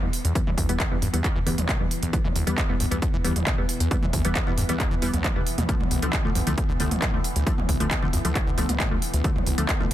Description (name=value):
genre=driving peak-time techno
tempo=135 BPM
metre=4/4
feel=straight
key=E phrygian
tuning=A4 = 442 Hz
part: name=wavetable chord stab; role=stabs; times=0.0-9.9 s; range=D3 to B3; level=-30 LUFS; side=left 1 dB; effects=sidechain pumping, dub echo
part: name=tight sequencer bass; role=bass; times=0.0-9.9 s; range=C2 to E2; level=-28 LUFS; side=equal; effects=sidechain pumping
part: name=deep dark ambient pad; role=drone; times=0.2-9.9 s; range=E3 to B3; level=-33 LUFS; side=equal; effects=chorus, built-in reverb, sidechain pumping
part: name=techno drum kit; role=drums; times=0.1-9.9 s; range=handclaps, hi-hat, toms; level=-29 LUFS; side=right 1 dB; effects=sidechain pumping on hats, sidechain pumping on toms
part: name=acid bass, saw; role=riff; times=0.2-9.9 s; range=D1 to E3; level=-31 LUFS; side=equal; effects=none
part: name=electronic kick drum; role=drums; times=0.4-9.8 s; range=none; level=-25 LUFS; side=equal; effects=overdrive
room=little or no reverb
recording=dense, heavily limited modern master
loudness=-22 LUFS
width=side -13 dB against mid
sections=0.0-9.9 A section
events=none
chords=0.0 Em; 5.7 Dm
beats=| 0.35 0.80 1.24 1.69 | 2.13 2.58 3.02 3.47 | 3.91 4.36 4.80 5.24 | 5.69 6.13 6.58 7.02 | 7.47 7.91 8.36 8.80 | 9.24 9.69